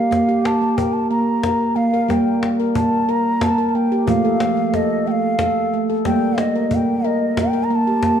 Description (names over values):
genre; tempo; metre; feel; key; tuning
world meditative, meditative tuned percussion; 61 BPM (dotted quarters); 6/8; straight; G minor; A4 = 438 Hz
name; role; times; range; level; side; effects
mellow hollow bansuri; melody; 0.0-8.2 s; Eb5 to Bb5; -22 LUFS; equal; none
handpan; arpeggios; 0.0-8.2 s; F3 to Bb4; -18 LUFS; right 1 dB; ping-pong delay
cajon; percussion; 0.1-8.2 s; none; -27 LUFS; left 2 dB; none
room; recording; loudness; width
wet recital hall reverb, RT60 1.6 s, small room ambience; none; -16 LUFS; side -8 dB against mid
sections
0.0-8.2 A section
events
none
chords
0.1 Gm9/Bb; 2.1 Gm; 4.1 F; 6.0 Gm